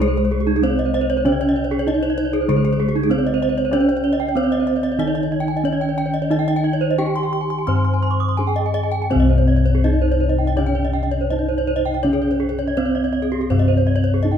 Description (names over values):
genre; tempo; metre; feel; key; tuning
Balinese gamelan; 82-97 BPM; 4/4; straight; C pelog; A4 = 439 Hz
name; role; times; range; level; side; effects
gamelan-type bronze metallophone; melody; 0.0-14.4 s; Ab3 to C5; -22 LUFS; right 2 dB; none
gamelan-type bronze metallophone; accompaniment; 0.0-14.4 s; C3 to C4; -28 LUFS; right 1 dB; none
gamelan-type bronze metallophone; arpeggios; 0.0-14.3 s; G4 to Db6+35c; -25 LUFS; left 4 dB; none
gamelan-type bossed gongs; bass; 0.0-14.4 s; C2 to G4; -20 LUFS; left 2 dB; none
gamelan-type bronze metallophone; arpeggios; 0.1-14.4 s; Eb4 to Eb6; -24 LUFS; right 7 dB; none
room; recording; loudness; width
moderate recital hall reverb, RT60 1.5 s; minimal, uncompressed stereo recording; -16 LUFS; side -8 dB against mid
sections
0.0-9.1 A section; 9.1-14.4 B section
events
none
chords
none